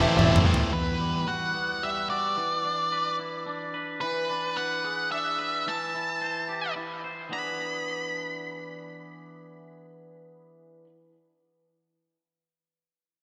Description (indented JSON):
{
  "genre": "post-rock",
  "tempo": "109 BPM",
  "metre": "3/4",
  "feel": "straight",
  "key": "unclear",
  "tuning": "A4 = 441 Hz",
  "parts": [
    { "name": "octave-fuzz lead guitar", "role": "melody", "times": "0.0-10.8 s", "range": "E4 to B5", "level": "-31 LUFS", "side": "equal", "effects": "distortion, slapback echo, digital delay" },
    { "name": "felt-muted upright piano", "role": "arpeggios", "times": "0.0-0.7 s", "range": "C5 to E5", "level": "-38 LUFS", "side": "equal", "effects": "none" },
    { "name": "twangy electric guitar", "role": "arpeggios", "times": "0.0-10.9 s", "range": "E3 to C5", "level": "-37 LUFS", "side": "equal", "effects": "slapback echo, digital delay" },
    { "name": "cranked stack guitar", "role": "riff", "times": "0.0-0.7 s", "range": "E3 to C5", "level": "-32 LUFS", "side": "equal", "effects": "overdrive, slapback echo" },
    { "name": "thick fuzz guitar", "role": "riff", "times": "0.0-1.2 s", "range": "E2 to A3", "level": "-31 LUFS", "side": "equal", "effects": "distortion" },
    { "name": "growling picked electric bass", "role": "bass", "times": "0.0-0.6 s", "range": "E1 to E2", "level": "-28 LUFS", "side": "equal", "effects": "overdrive" },
    { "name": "toms", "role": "drums", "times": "0.2-0.7 s", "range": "none", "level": "-29 LUFS", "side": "equal", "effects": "none" }
  ],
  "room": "wet lush hall reverb, RT60 2.8 s",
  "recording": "big arena sound",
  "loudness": "-28 LUFS",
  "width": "mono",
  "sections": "0.7-7.3 A section; 7.3-10.6 B section",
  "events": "drum fill 0.0-0.7",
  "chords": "0.0 Am7/E; 0.7 Emadd9; 2.4 Bmadd11/E; 4.0 E7; 5.7 Am7/E; 7.3 E7"
}